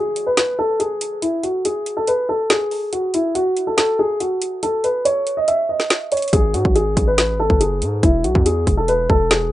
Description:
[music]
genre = hip hop, drill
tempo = 141 BPM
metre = 4/4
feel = half-time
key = unclear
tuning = A4 = 441 Hz
[part]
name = dark concert grand piano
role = melody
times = 0.0-9.5 s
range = E4 to E5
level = -18 LUFS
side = equal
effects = low-pass filter, tape echo
[part]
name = drill drum kit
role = drums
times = 0.2-9.4 s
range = hi-hat, kick drum, snare drum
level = -18 LUFS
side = equal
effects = none
[part]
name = distorted 808-style bass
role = bass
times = 6.3-9.5 s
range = E1 to G#2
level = -21 LUFS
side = equal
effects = distortion
[sound]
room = little or no reverb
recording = rough home demo mix, nothing above 10.3 kHz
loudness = -16 LUFS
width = side -15 dB against mid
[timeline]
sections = 0.0-9.5 A section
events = break 0.0-6.3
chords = 0.0 N.C.; 6.3 F#sus2; 8.0 E

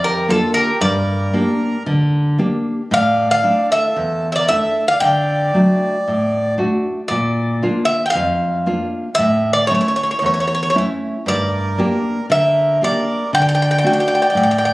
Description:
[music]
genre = greek folk, Greek bouzouki band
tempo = 115 BPM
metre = 4/4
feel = straight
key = G dorian sharp4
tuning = A4 = 439 Hz
[part]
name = Greek bouzouki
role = melody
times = 0.0-14.7 s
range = A4 to G5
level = -17 LUFS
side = equal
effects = none
[part]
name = accordion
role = second line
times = 0.0-6.5, 11.3-14.7 s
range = F4 to D5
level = -23 LUFS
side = right 1 dB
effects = none
[part]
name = nylon-string guitar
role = accompaniment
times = 0.0-14.7 s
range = E2 to G4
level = -18 LUFS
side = equal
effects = none
[sound]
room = light reverb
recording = recorded on a phone in the room, club reverb, compression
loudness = -14 LUFS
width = side -20 dB against mid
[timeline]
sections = 0.0-7.1 A section; 7.1-14.7 B section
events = none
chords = 0.0 Bb; 0.8 Gm; 2.9 Asus4; 5.0 D; 7.1 Bb; 9.2 A; 11.3 Gm; 13.3 D

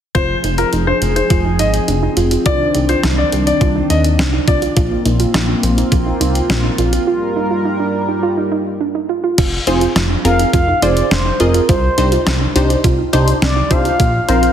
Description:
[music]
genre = synth-pop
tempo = 104 BPM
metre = 4/4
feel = straight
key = F dorian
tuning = A4 = 440 Hz
[part]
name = clear concert grand piano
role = second line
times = 0.1-4.6 s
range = Bb4 to Eb5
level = -19 LUFS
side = left 3 dB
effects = ping-pong delay
[part]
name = soft round pluck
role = arpeggios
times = 0.1-14.5 s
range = D4 to F4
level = -21 LUFS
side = right 5 dB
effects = chorus, ping-pong delay
[part]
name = chorused synth bass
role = bass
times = 0.1-14.5 s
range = F1 to Eb2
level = -17 LUFS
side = equal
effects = none
[part]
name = detuned 8-bit digital drum machine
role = drums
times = 0.1-14.5 s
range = crash cymbal, hi-hat, kick drum, snare drum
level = -18 LUFS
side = left 1 dB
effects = none
[part]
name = chorused pulse-width pad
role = sustained chords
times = 0.2-9.4 s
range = Eb3 to Bb4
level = -19 LUFS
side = equal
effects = none
[part]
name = funky polysynth comp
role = accompaniment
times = 9.7-14.5 s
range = C4 to Eb5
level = -18 LUFS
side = right 1 dB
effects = chorus
[part]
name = mellow horn-like synth lead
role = melody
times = 10.2-14.5 s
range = Bb4 to F5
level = -18 LUFS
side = left 1 dB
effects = chorus, ping-pong delay
[sound]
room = moderate scoring stage reverb, RT60 1.5 s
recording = heavily compressed radio sound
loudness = -12 LUFS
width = side -9 dB against mid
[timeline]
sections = 0.1-9.4 A section; 9.4-14.5 B section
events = break 7.1-9.4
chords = 0.1 Fm; 2.5 Cmadd9; 4.8 Bbsus2; 7.1 Gm7; 9.4 Fm; 11.7 Cmadd9; 14.0 Bbsus2

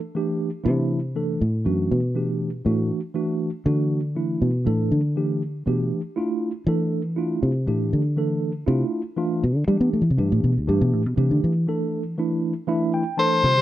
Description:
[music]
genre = jazz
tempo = 120 BPM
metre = 4/4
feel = straight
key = C major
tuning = A4 = 443 Hz
[part]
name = mellow tine electric piano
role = accompaniment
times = 0.1-13.6 s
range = D3 to A5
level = -24 LUFS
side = right 1 dB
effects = medium stereo tremolo
[part]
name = fingered electric bass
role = bass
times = 0.7-13.6 s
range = D2 to B3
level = -22 LUFS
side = equal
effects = none
[part]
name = edgy soprano saxophone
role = melody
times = 13.2-13.6 s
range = C5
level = -17 LUFS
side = left 2 dB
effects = none
[sound]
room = studio reverb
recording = dry, close 1970s-style studio recording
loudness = -20 LUFS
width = side -13 dB against mid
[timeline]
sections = 0.0-13.4 A section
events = fingered electric bass solo 0.0-13.4; tine electric piano fill 12.4-13.4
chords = 0.0 Cadd9; 1.4 Gmaj9; 5.4 Fmaj9; 9.4 Cmaj9 (rootless)

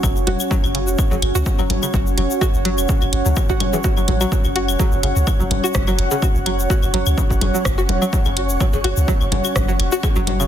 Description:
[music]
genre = minimal techno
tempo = 126 BPM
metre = 4/4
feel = swing 54% on 16ths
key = unclear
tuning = A4 = 440 Hz
[part]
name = string-like resonator pluck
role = riff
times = 0.0-10.4 s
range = C#3 to F#4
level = -25 LUFS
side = equal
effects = chorus, sidechain pumping, digital delay
[part]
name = punchy sub bass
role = bass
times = 0.0-10.5 s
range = E1 to C#2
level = -21 LUFS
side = equal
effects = sidechain pumping
[part]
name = electronic kick drum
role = drums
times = 0.0-10.1 s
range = none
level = -20 LUFS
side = equal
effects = studio reverb
[part]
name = claves, congas and cowbell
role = percussion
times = 0.0-10.5 s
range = none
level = -27 LUFS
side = left 5 dB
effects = studio reverb, ping-pong delay
[part]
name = egg shaker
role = percussion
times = 0.0-10.5 s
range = none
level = -30 LUFS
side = left 5 dB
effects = none
[part]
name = warbly tape-like pad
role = texture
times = 0.0-10.5 s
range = C#4 to F#5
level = -24 LUFS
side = right 1 dB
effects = chorus, built-in reverb, sidechain pumping
[part]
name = garage drum kit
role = drums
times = 0.3-10.4 s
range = hi-hat, rim click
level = -24 LUFS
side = right 2 dB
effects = overdrive, studio reverb
[part]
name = flickering grainy texture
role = texture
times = 5.1-10.5 s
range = C#5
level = -31 LUFS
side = right 3 dB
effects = built-in reverb, sidechain pumping
[sound]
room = light reverb, digital ambience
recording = dense, heavily limited modern master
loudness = -16 LUFS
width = side -10 dB against mid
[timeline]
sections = 0.0-10.5 A section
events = none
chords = 0.0 F#5

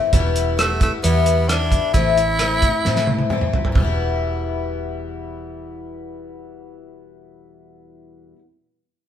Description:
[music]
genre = folk rock and heartland rock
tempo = 132 BPM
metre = 4/4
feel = straight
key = E minor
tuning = A4 = 437 Hz
[part]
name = picked twelve-string acoustic guitar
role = accompaniment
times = 0.0-8.4 s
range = E2 to E4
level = -23 LUFS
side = left 7 dB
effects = none
[part]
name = fingered electric bass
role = bass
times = 0.1-8.3 s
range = E1 to A2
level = -23 LUFS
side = right 1 dB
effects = none
[part]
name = cloth-damped thuddy drum kit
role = drums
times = 0.1-3.9 s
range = hi-hat, kick drum, rim click, snare drum, toms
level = -20 LUFS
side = right 1 dB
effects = none
[part]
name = raspy tenor saxophone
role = melody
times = 0.6-3.3 s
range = A3 to E4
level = -22 LUFS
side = right 3 dB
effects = none
[sound]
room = wet stone room reverb, RT60 1.1 s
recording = band playing live in one room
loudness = -16 LUFS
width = side -9 dB against mid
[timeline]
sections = 0.0-3.8 A section; 3.8-7.4 B section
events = drum fill 2.8-3.8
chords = 0.1 Em; 1.9 Am; 3.8 Em

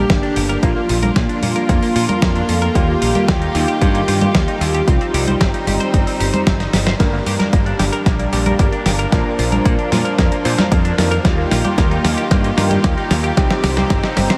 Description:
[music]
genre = italo disco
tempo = 113 BPM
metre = 4/4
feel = straight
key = C minor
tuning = A4 = 439 Hz
[part]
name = soft octave-layered synth lead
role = melody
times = 0.0-6.2 s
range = D4 to Bb4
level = -26 LUFS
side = equal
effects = chorus, tape echo
[part]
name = dark studio string section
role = sustained chords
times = 0.0-14.4 s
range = Eb3 to G4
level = -24 LUFS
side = equal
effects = low-pass filter
[part]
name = direct-recorded clean electric guitar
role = arpeggios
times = 0.0-14.4 s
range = Bb3 to C5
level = -28 LUFS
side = equal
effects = analog chorus, tape echo
[part]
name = modern bright picked electric bass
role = bass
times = 0.0-14.3 s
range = G1 to Bb2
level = -23 LUFS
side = equal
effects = none
[part]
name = dusty soul sampler-style drum kit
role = drums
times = 0.1-14.4 s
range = congas, hi-hat, snare drum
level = -22 LUFS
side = equal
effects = none
[part]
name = electronic kick drum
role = drums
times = 0.1-14.0 s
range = none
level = -20 LUFS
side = equal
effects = overdrive
[part]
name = clear electric grand piano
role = stabs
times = 7.0-14.4 s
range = G2 to D5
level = -27 LUFS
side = equal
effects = low-pass filter, tape echo
[sound]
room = moderate huge ambient reverb, RT60 7.6 s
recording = dreamy mix soaked in reverb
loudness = -16 LUFS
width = mono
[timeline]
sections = 0.0-7.0 A section; 7.0-14.4 B section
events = drum fill 6.6-7.0, 7.0-14.4; band accent 6.9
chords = 0.0 Gm; 0.6 Bb; 2.8 Ebadd9; 4.9 Cm; 7.0 Gm; 9.1 Bb; 11.2 Ebadd9; 13.4 Cm

